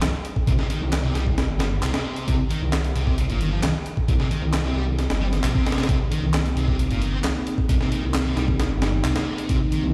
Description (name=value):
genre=breakbeat, breaks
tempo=133 BPM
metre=4/4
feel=straight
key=C minor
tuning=A4 = 437 Hz
part: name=dark detuned saw bass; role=bass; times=0.0-9.9 s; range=G1 to C2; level=-27 LUFS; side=equal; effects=none
part: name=breakbeat sampler-style drum kit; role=drums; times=0.0-9.8 s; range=hi-hat, kick drum, snare drum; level=-27 LUFS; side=equal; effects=none
part: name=electronic handclaps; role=drums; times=0.0-9.1 s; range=none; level=-37 LUFS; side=equal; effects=none
part: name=thick fuzz guitar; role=riff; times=0.5-9.8 s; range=Bb2 to C4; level=-30 LUFS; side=equal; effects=distortion, tape echo
part: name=swell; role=sound effects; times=5.2-5.9 s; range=none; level=-38 LUFS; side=equal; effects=none
part: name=dark analog pad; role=sustained chords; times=5.9-9.9 s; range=Bb3 to Eb4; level=-30 LUFS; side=equal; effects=chorus, vintage 12-bit sampler grit, sidechain pumping
room=light reverb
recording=played on a big sound system in a bare room, stone room reverb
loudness=-23 LUFS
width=mono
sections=0.0-9.9 A section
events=none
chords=0.0 Cm7